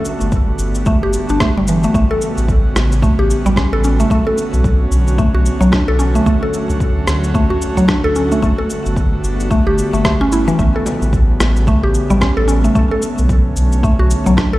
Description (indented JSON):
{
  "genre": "organic downtempo",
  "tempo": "111 BPM",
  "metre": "4/4",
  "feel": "swing 59% on 16ths",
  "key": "A mixolydian",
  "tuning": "A4 = 440 Hz",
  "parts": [
    { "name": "airy breathy pad", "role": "sustained chords", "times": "0.0-14.6 s", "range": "C#3 to F#4", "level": "-22 LUFS", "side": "right 1 dB", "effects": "chorus, sidechain pumping" },
    { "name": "mallet-like synth pluck", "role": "arpeggios", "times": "0.0-14.6 s", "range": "E3 to A4", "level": "-17 LUFS", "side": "equal", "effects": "chorus, digital delay" },
    { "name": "electronic cabasa and rim click", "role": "drums", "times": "0.1-14.5 s", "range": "none", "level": "-23 LUFS", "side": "equal", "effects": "overdrive" },
    { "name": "warm sub bass", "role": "bass", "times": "0.2-14.6 s", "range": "G1 to D2", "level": "-16 LUFS", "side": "equal", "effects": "none" },
    { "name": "electronic kick drum", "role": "drums", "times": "0.3-14.5 s", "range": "none", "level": "-17 LUFS", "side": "equal", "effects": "none" },
    { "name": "frame drum", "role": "percussion", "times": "10.9-11.0 s", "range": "none", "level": "-26 LUFS", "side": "left 1 dB", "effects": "none" }
  ],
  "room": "light reverb",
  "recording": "played on a big sound system in a bare room, large studio reverb",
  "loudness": "-12 LUFS",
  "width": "side -17 dB against mid",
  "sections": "0.0-14.6 A section",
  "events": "none",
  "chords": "0.0 Gmaj9; 1.9 A13; 4.1 Bm9; 6.3 Dmaj7; 8.4 Gmaj9; 10.6 A13; 12.8 Bm9"
}